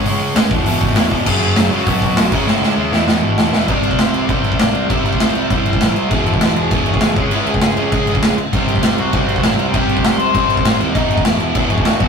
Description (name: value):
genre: punk rock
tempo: 198 BPM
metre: 4/4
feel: straight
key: E major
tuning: A4 = 440 Hz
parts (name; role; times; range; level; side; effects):
- distorted electric guitar; riff; 0.0-12.1 s; E2 to C#4; -19 LUFS; right 2 dB; distortion
- sludgy distorted guitar; riff; 0.0-12.1 s; E2 to C#4; -23 LUFS; left 2 dB; overdrive
- overdriven picked electric bass; bass; 0.0-12.1 s; E1 to D#2; -26 LUFS; equal; none
- big rock drum kit; drums; 0.1-12.1 s; crash cymbal, hi-hat, kick drum, snare drum; -16 LUFS; equal; none
- bluesy overdriven lead guitar; melody; 1.3-12.1 s; D4 to C6; -22 LUFS; left 2 dB; distortion
room: moderate booth ambience, RT60 0.2 s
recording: rough rehearsal-room recording, tube saturation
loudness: -13 LUFS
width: side -6 dB against mid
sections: 0.0-3.7 A section; 3.7-12.1 B section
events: drum fill 2.5-3.7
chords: 0.0 C#5; 0.5 E; 1.3 F#5; 1.9 B5; 2.3 C#m; 2.9 E; 3.7 C; 6.1 E; 7.2 C#m; 8.5 C; 10.9 E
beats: | 0.06 0.36 0.66 0.96 | 1.26 1.57 1.87 2.17 | 2.47 2.78 3.08 3.38 | 3.68 3.99 4.29 4.59 | 4.89 5.20 5.50 5.80 | 6.11 6.41 6.71 7.01 | 7.32 7.62 7.92 8.23 | 8.53 8.83 9.14 9.44 | 9.74 10.04 10.35 10.65 | 10.95 11.25 11.55 11.86